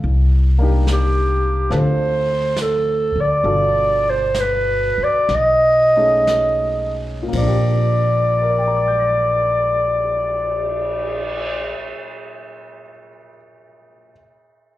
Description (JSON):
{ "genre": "jazz ballad", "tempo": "55-72 BPM", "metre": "4/4", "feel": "swing 68% on 8ths", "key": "Bb major", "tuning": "A4 = 441 Hz", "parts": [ { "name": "warm baby grand piano", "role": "accompaniment", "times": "0.0-14.1 s", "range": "Bb2 to Bb6", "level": "-27 LUFS", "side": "left 2 dB", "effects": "slapback echo" }, { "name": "upright bass", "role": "bass", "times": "0.0-11.7 s", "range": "G1 to D2", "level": "-20 LUFS", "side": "equal", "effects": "none" }, { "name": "jazz brush drum kit", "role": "drums", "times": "0.0-11.4 s", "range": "brushed snare drum, cymbal swell, hi-hat, kick drum, ride cymbal, snare drum", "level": "-32 LUFS", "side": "right 1 dB", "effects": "none" }, { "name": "mellow clarinet", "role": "melody", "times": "0.9-11.8 s", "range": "G4 to D#5", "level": "-17 LUFS", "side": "equal", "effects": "slapback echo" } ], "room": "light reverb, small room ambience", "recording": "live gig heard through the venue's PA, club reverb", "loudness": "-15 LUFS", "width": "side -15 dB against mid", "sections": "0.0-7.3 A section; 7.3-11.6 B section", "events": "slowing down 0.0-7.3", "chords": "0.0 Cm9; 1.7 Dm7; 3.4 G9; 5.3 B13; 7.3 Bb69" }